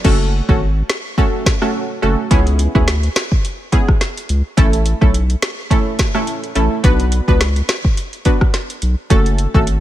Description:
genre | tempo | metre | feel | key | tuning
dancehall | 106 BPM | 4/4 | swing 56% on 16ths | F# minor | A4 = 441 Hz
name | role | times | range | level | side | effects
punchy chord stab | accompaniment | 0.0-9.7 s | A3 to B4 | -19 LUFS | right 1 dB | chorus
saturated sub bass | bass | 0.0-9.8 s | F#1 to D2 | -16 LUFS | equal | none
afro-pop drum kit | drums | 0.0-9.8 s | crash cymbal, hi-hat, kick drum, rim click, snare drum | -16 LUFS | equal | vintage 12-bit sampler grit
room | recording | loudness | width
little or no reverb | none | -13 LUFS | side -13 dB against mid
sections
0.0-9.8 A section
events
none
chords
0.0 F#m; 2.3 C#m7; 4.6 A; 6.8 Bm; 9.1 F#m

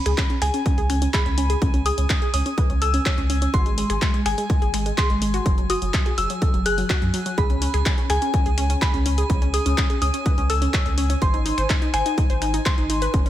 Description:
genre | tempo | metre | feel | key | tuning
progressive house | 125 BPM | 4/4 | straight | C# minor | A4 = 440 Hz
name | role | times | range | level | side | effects
glassy synth bell | melody | 0.0-13.3 s | G#5 to F#6 | -27 LUFS | left 2 dB | chorus, tremolo, ping-pong delay
drifting glass-harmonics texture | texture | 0.0-13.3 s | G#5 | -36 LUFS | right 2 dB | chorus, built-in reverb, sidechain pumping
wide unison pluck | arpeggios | 0.1-13.3 s | F#3 to C#5 | -26 LUFS | equal | cassette tape, sidechain pumping, digital delay
round analog bass | bass | 0.1-13.3 s | F#1 to F#2 | -23 LUFS | equal | sidechain pumping
big-room dance drum kit | drums | 0.1-13.3 s | finger snaps, handclaps, hi-hat | -28 LUFS | left 1 dB | studio reverb
electronic kick drum | drums | 0.2-13.2 s | none | -21 LUFS | equal | overdrive, studio reverb
room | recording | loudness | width
little or no reverb | none | -19 LUFS | side -12 dB against mid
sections
0.0-13.3 A section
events
filter sweep on synth pluck 0.0-13.3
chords
0.0 C#7(no3); 3.5 G#; 5.5 F#7sus2; 7.4 C#7(no3); 11.2 G#

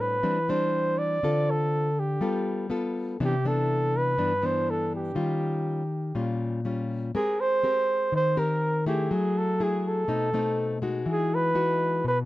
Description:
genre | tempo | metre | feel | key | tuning
bossa nova | 122 BPM | 4/4 | straight | unclear | A4 = 440 Hz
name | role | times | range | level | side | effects
mellow flugelhorn | melody | 0.0-12.2 s | G4 to D5 | -26 LUFS | right 2 dB | none
nylon-string guitar | accompaniment | 0.0-12.3 s | G2 to Bb4 | -27 LUFS | left 2 dB | none
room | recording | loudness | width
light reverb | none | -24 LUFS | side -16 dB against mid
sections
0.0-7.1 A section; 7.1-12.3 B section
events
none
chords
0.0 Am11; 1.2 Dm7; 2.2 G9; 3.2 Cmaj9; 5.2 Eb9; 7.1 Abmaj9; 9.1 Gbm9; 10.1 B7b9; 11.1 Emaj9

